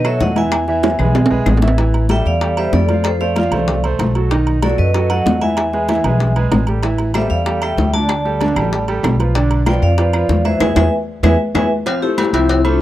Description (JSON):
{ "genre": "latin, salsa", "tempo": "190 BPM", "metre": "4/4", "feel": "straight", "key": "A minor", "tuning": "A4 = 437 Hz", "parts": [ { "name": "vibraphone with medium hard mallets", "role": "melody", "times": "0.0-12.8 s", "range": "C4 to A5", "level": "-19 LUFS", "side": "left 1 dB", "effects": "none" }, { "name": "bright upright piano", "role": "accompaniment", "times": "0.0-12.8 s", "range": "D3 to F5", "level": "-21 LUFS", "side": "right 4 dB", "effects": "none" }, { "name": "upright bass", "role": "bass", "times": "0.0-12.8 s", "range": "A1 to B2", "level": "-17 LUFS", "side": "equal", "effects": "none" }, { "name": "claves", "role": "percussion", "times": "0.0-1.6, 7.1-11.6 s", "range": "none", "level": "-28 LUFS", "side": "left 7 dB", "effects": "none" }, { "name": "congas", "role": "percussion", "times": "0.0-12.8 s", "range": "none", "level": "-22 LUFS", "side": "left 2 dB", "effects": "none" }, { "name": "timbales and agogo bells", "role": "percussion", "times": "0.0-12.8 s", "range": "none", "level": "-22 LUFS", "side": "right 4 dB", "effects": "none" }, { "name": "bongos and cowbell", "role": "percussion", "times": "0.2-12.7 s", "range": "none", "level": "-24 LUFS", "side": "left 4 dB", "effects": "none" } ], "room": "little or no reverb", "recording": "dry, close 1970s-style studio recording", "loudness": "-13 LUFS", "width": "side -14 dB against mid", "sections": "0.0-1.8 A section; 1.8-11.9 B section", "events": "drum fill 0.8-1.8, 11.2-11.9; band accent 10.6-11.9", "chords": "0.0 B7(no3); 0.5 E; 1.8 A7(no3); 3.0 F; 4.3 B7; 5.6 E; 6.8 A7(no3); 8.1 Dsus4; 9.4 Bdim; 10.6 E; 11.9 Fmaj9", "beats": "0.20 | 0.52 0.84 1.15 1.47 | 1.78 2.10 2.42 2.73 | 3.05 3.37 3.68 4.00 | 4.31 4.63 4.94 5.26 | 5.58 5.89 6.21 6.52 | 6.83 7.15 7.46 7.78 | 8.09 8.41 8.72 9.04 | 9.35 9.67 9.98 10.29 | 10.61 10.92 11.24 11.55 | 11.86 12.18 12.49 12.81" }